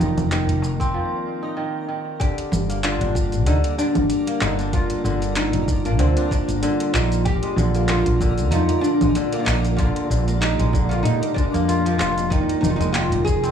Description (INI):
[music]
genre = organic downtempo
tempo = 95 BPM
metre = 4/4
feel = swing 55% on 16ths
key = unclear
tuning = A4 = 441 Hz
[part]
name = oud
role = melody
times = 0.0-13.5 s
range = C4 to Ab4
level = -24 LUFS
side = equal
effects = tape echo
[part]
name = warbly tape-like pad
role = sustained chords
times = 2.8-13.5 s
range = Bb2 to G4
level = -31 LUFS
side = equal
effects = chorus, built-in reverb, sidechain pumping
[part]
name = kora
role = arpeggios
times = 0.0-13.5 s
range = D3 to F4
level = -26 LUFS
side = equal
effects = tape echo
[part]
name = woody fretless electric bass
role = bass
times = 0.0-13.5 s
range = F1 to Bb2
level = -21 LUFS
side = equal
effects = wide subtle chorus
[part]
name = deep house drum kit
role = drums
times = 0.0-13.5 s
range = congas, handclaps, hi-hat, shaker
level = -27 LUFS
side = right 2 dB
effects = small room ambience
[part]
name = darbuka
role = percussion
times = 0.0-0.9, 12.6-13.5 s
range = none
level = -32 LUFS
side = left 9 dB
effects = none
[part]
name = twinkling granular texture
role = texture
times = 0.0-13.5 s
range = Bb3 to D5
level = -36 LUFS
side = right 2 dB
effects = built-in reverb
[part]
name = electronic kick drum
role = drums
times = 0.8-13.4 s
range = none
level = -23 LUFS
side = equal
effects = small room ambience
[sound]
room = little or no reverb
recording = dry, gritty hardware recording, transformer saturation, cassette tape, studio reverb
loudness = -18 LUFS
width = side -8 dB against mid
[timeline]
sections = 0.0-2.2 A section; 2.2-13.5 B section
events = break 0.9-2.2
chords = 0.0 Fm7; 2.2 Gm; 7.3 Bb7; 12.3 Fm7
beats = 0.31 0.94 1.58 | 2.21 2.84 3.47 4.10 | 4.74 5.37 6.00 6.63 | 7.26 7.89 8.52 9.16 | 9.79 10.42 11.05 11.68 | 12.31 12.95